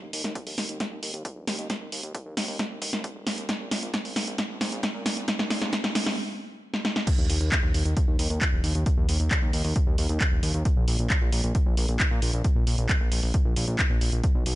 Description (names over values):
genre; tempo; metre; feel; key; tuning
uplifting trance; 134 BPM; 4/4; straight; unclear; A4 = 440 Hz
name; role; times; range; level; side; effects
fat analog bass; bass; 0.0-14.6 s; Eb1 to Bb2; -28 LUFS; equal; sidechain pumping, high-pass filter
punchy analog drum machine; drums; 0.1-14.6 s; crash cymbal, handclaps, hi-hat, snare drum; -28 LUFS; equal; none
electronic kick drum; drums; 0.4-14.3 s; none; -25 LUFS; equal; high-pass filter on kick
room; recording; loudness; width
light reverb; nothing above 10.8 kHz; -23 LUFS; side -17 dB against mid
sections
0.0-7.1 A section; 7.1-14.6 B section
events
build-up 0.0-7.1; drum fill 0.0-6.2, 6.7-7.1; stop 6.2-7.1; drop 7.1-14.6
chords
none